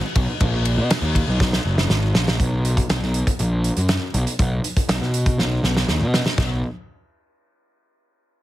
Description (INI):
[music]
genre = math rock and midwest emo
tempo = 121 BPM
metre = 4/4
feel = straight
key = B major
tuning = A4 = 440 Hz
[part]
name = fuzz picked electric bass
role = bass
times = 0.2-6.6 s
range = F#1 to B2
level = -20 LUFS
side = equal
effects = overdrive
[part]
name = loose indie drum kit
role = drums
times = 0.2-6.5 s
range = china cymbal, hi-hat, kick drum, ride cymbal, snare drum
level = -21 LUFS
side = equal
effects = none
[sound]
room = little or no reverb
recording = heavily compressed radio sound, multiband compression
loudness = -18 LUFS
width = side -15 dB against mid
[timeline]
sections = 0.0-2.4 A section; 2.4-6.4 B section; 6.4-8.4 C section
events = drum fill 1.4-2.4, 5.4-6.4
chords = none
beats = | 0.41 0.91 1.40 1.90 | 2.40 2.90 3.39 3.89 | 4.39 4.89 5.38 5.88 | 6.38